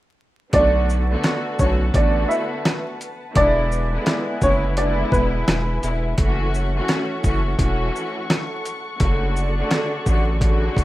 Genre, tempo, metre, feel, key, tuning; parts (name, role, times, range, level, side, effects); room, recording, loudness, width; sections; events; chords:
hip hop, boom-bap hip-hop; 85 BPM; 4/4; swing 60% on 16ths; A4 = 440 Hz
warm upright piano; melody; 0.5-6.1 s; B3 to E5; -22 LUFS; right 1 dB; high-pass filter, low-pass filter, slapback echo
clear studio string section; accompaniment; 0.5-10.8 s; C#3 to F#4; -26 LUFS; equal; high-pass filter, low-pass filter
warm studio string section; sustained chords; 0.5-10.8 s; A4 to C#6; -32 LUFS; left 1 dB; high-pass filter, low-pass filter
clear horn section; stabs; 0.5-10.8 s; D3 to D5; -35 LUFS; equal
saturated sub bass; bass; 0.5-10.8 s; E1 to B1; -21 LUFS; equal
dusty soul sampler-style drum kit; drums; 0.5-10.8 s; hi-hat, kick drum, rim click, shaker, snare drum; -21 LUFS; equal; overdrive
studio ambience; rough home demo mix, vinyl crackle; -18 LUFS; side -16 dB against mid
0.5-10.8 A section
0.5 Bm7; 3.4 E7; 6.2 F#m7; 9.0 Dmaj7/F#